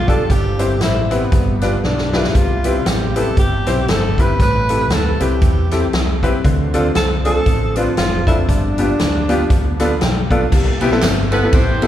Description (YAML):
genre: uptempo gospel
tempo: 117 BPM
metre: 4/4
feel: swing 58% on 8ths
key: C major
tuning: A4 = 440 Hz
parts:
  - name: mellow tenor saxophone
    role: melody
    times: 0.0-10.0 s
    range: B3 to B4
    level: -21 LUFS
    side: equal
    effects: none
  - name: clear baby grand piano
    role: accompaniment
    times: 0.0-11.9 s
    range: G2 to B5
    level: -19 LUFS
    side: left 1 dB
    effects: none
  - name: pipe organ, foundations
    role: sustained chords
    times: 0.0-10.5 s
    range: C3 to C4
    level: -29 LUFS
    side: right 1 dB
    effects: none
  - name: fingered electric bass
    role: bass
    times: 0.0-11.9 s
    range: F1 to E2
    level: -20 LUFS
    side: equal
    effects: none
  - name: swinging big-band drum kit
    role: drums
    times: 0.1-11.9 s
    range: crash cymbal, hi-hat, kick drum, ride cymbal, snare drum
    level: -18 LUFS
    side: equal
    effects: none
  - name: tambourine and handclaps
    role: percussion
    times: 10.5-11.9 s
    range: none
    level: -30 LUFS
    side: right 3 dB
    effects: none
  - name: clear horn section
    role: melody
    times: 11.3-11.9 s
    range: B3 to C5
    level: -19 LUFS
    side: left 1 dB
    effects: none
room: wet church reverb, RT60 3.0 s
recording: band playing live in one room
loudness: -14 LUFS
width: side -11 dB against mid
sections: 0.0-10.5 A section; 10.5-11.9 B section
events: drum fill 1.8-2.4; grand piano fill 9.5-10.5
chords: 0.3 C/G; 1.3 G7; 2.4 Cmaj7; 4.4 Am7; 6.4 Dm7; 8.5 G7; 10.5 Cmaj7